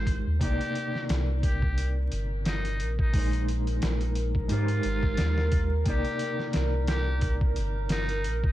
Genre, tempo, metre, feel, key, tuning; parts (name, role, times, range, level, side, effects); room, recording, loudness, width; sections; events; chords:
trip hop; 88 BPM; 4/4; swing 56% on 16ths; C minor; A4 = 439 Hz
trumpet with metal mute; melody; 0.0-8.5 s; Eb4 to C5; -36 LUFS; equal; vintage 12-bit sampler grit, tape echo
mellow electric guitar; accompaniment; 0.0-8.5 s; Bb2 to D5; -33 LUFS; equal; tremolo, low-pass filter, tape echo
soft dub sub bass; bass; 0.0-8.5 s; G1 to Ab2; -28 LUFS; equal; tube saturation
trip hop sampler-style drum kit; drums; 0.1-8.5 s; hi-hat, kick drum, snare drum; -29 LUFS; equal
warbly tape-like pad; sustained chords; 1.2-8.5 s; Bb4; -37 LUFS; right 1 dB; chorus, built-in reverb
little or no reverb; dark, warm production, vinyl crackle; -25 LUFS; side -14 dB against mid
0.0-8.5 A section
filter sweep on clean electric guitar 0.0-8.5
0.4 Cm9; 3.1 Bb9sus4; 4.5 Fm11/Ab; 5.9 Cm9